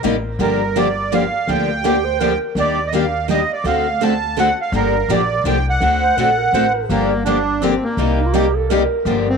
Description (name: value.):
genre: acoustic string swing (jazz manouche).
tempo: 166 BPM.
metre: 3/4.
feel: swing 60% on 8ths.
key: G minor.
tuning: A4 = 439 Hz.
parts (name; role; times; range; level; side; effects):
accordion; melody; 0.0-9.4 s; Bb3 to A5; -19 LUFS; right 3 dB; light tremolo tuning, tape echo.
picked steel-string acoustic guitar; accompaniment; 0.0-9.3 s; C3 to A4; -21 LUFS; left 12 dB; none.
picked steel-string acoustic guitar; accompaniment; 0.0-9.3 s; C3 to A4; -23 LUFS; right 10 dB; none.
upright bass; bass; 0.0-9.4 s; G1 to Eb2; -23 LUFS; left 1 dB; none.
breathy clarinet; second line; 1.8-2.5, 6.0-9.2 s; Eb4 to C5; -22 LUFS; right 8 dB; none.
room: moderate spring reverb, RT60 1.6 s.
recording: 1960s-style stereo with parts hard left and right, tape saturation.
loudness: -15 LUFS.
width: side -5 dB against mid.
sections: 0.0-6.9 A section; 6.9-9.4 A section.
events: none.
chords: 0.4 Gm7; 2.6 Ebmaj7; 3.6 D7#9; 4.7 Gm7; 5.8 D7; 6.9 Gm7; 8.0 Cm7.